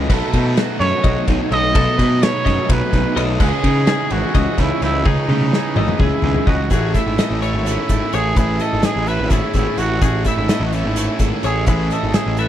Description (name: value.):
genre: math rock and midwest emo.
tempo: 254 BPM (eighths).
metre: 7/8.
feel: straight.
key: unclear.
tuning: A4 = 440 Hz.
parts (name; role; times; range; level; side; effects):
twelve-string electric guitar; accompaniment; 0.0-12.5 s; A2 to B4; -26 LUFS; right 4 dB; lush chorus.
twelve-string electric guitar; arpeggios; 0.0-12.5 s; G#4 to E5; -26 LUFS; left 9 dB; none.
biting overdriven guitar; riff; 0.0-12.5 s; A2 to E4; -24 LUFS; right 1 dB; none.
fuzz picked electric bass; bass; 0.0-12.5 s; G#1 to C#3; -20 LUFS; equal; overdrive.
clear trumpet; melody; 0.1-12.5 s; D#4 to D#5; -23 LUFS; right 3 dB; none.
loose indie drum kit; drums; 0.1-12.5 s; crash cymbal, hi-hat, kick drum, ride cymbal, snare drum, toms; -19 LUFS; equal; none.
room: little or no reverb.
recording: none.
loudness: -15 LUFS.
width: side -11 dB against mid.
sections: 0.0-6.7 A section; 6.7-12.5 B section.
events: drum fill 5.1-6.7.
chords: 0.1 B13; 3.4 C#m9.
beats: | 0.10 0.34 0.57 0.81 1.04 1.28 1.52 | 1.75 1.99 2.22 2.46 2.70 2.93 3.17 | 3.40 3.64 3.88 4.11 4.35 4.58 4.82 | 5.06 5.29 5.53 5.77 6.00 6.24 6.47 | 6.71 6.95 7.18 7.42 7.66 7.89 8.13 | 8.37 8.61 8.84 9.08 9.31 9.55 9.79 | 10.03 10.26 10.50 10.73 10.97 11.21 11.44 | 11.68 11.91 12.15 12.38.